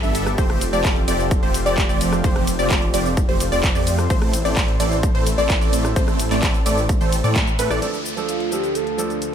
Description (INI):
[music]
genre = EDM, festival progressive house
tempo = 129 BPM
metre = 4/4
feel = straight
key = A minor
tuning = A4 = 438 Hz
[part]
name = lush unison pad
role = sustained chords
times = 0.0-9.3 s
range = D2 to D5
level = -28 LUFS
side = equal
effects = chorus, sidechain pumping
[part]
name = wide unison pluck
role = arpeggios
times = 0.0-7.8 s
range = B4 to E5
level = -26 LUFS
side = moving between left 3 dB and right 3 dB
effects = auto-pan, sidechain pumping, tape echo
[part]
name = supersaw chords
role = riff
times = 0.0-7.8 s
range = E3 to E5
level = -24 LUFS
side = right 1 dB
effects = phaser, sidechain pumping, tape echo
[part]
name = detuned saw bass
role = bass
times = 0.0-7.8 s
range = F1 to A2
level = -24 LUFS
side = equal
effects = sidechain pumping
[part]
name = big-room dance drum kit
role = drums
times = 0.0-9.3 s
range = handclaps, hi-hat, ride cymbal, rim click, shaker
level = -26 LUFS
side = equal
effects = studio ambience
[part]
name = electronic kick drum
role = drums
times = 0.4-7.5 s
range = none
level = -20 LUFS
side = equal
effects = overdrive, studio ambience
[part]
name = bright baby grand piano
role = accompaniment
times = 7.8-9.3 s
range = F3 to A4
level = -26 LUFS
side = right 7 dB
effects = sidechain pumping
[part]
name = downlifter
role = sound effects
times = 7.8-9.3 s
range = none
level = -31 LUFS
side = equal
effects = none
[part]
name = breathy flute-like synth lead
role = melody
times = 8.3-9.3 s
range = F4 to A4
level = -24 LUFS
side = right 1 dB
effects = tremolo, wide subtle chorus, tape echo
[sound]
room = light reverb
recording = none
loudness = -17 LUFS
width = side -8 dB against mid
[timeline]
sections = 0.0-7.8 A section; 7.8-9.3 B section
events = drop 0.0-7.8; band accent 7.4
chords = 0.4 Fadd9; 4.1 Am; 7.8 Dm